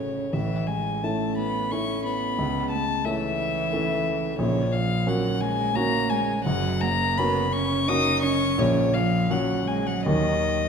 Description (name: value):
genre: classical, slow romantic movement for piano trio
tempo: 87 BPM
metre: 3/4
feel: uneven beats, rubato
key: F# major from 4.4 s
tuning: A4 = 440 Hz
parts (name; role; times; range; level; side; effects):
- rich violin; melody; 0.0-10.7 s; C#5 to D#6; -27 LUFS; left 5 dB; none
- warm cello; second line; 0.0-10.7 s; C#3 to D#4; -28 LUFS; right 5 dB; none
- warm grand piano; accompaniment; 0.0-10.7 s; F#1 to F#4; -26 LUFS; equal; none
room: wet scoring stage reverb, RT60 1.6 s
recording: minimal, uncompressed stereo recording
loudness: -22 LUFS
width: side -6 dB against mid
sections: 0.0-10.7 A section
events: none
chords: 0.3 A; 2.4 A/C#; 4.4 F#/A#; 6.5 F#; 8.6 F#/A#; 10.1 D#m